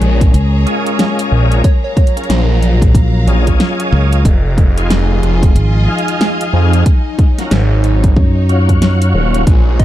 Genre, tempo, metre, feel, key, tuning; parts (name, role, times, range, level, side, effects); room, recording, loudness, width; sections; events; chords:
glitch hop; 92 BPM; 4/4; swing 61% on 16ths; A4 = 440 Hz
dark analog pad; sustained chords; 0.0-9.8 s; F3 to Db5; -22 LUFS; left 1 dB; chorus, vintage 12-bit sampler grit, sidechain pumping
phased detuned saw bass; bass; 0.0-9.8 s; Eb1 to F2; -12 LUFS; equal; phaser
pop drum kit; drums; 0.0-9.8 s; hi-hat, rim click, snare drum; -18 LUFS; equal; overdrive
bright studio string section; texture; 0.0-9.8 s; Gb3 to Bb5; -24 LUFS; left 1 dB; sidechain pumping
electronic kick drum; drums; 0.2-9.8 s; -10 LUFS; equal; overdrive
modern bright fingered electric bass; bass; 0.3-9.1 s; Ab1 to Gb2; -11 LUFS; equal
tonewheel organ; stabs; 0.7-9.5 s; Db4 to F5; -21 LUFS; equal; chorus vibrato, slow rotary speaker, vintage 12-bit sampler grit, sidechain pumping, ping-pong delay
plucky unison lead; melody; 1.6-2.5, 9.8 s; Db5 to Eb5; -25 LUFS; right 2 dB; ping-pong delay
little or no reverb; dark, warm production; -10 LUFS; side -13 dB against mid
0.0-9.8 A section
0.0 Bbm7; 1.6 Gbmaj7; 4.3 Fm7; 6.9 Ebm7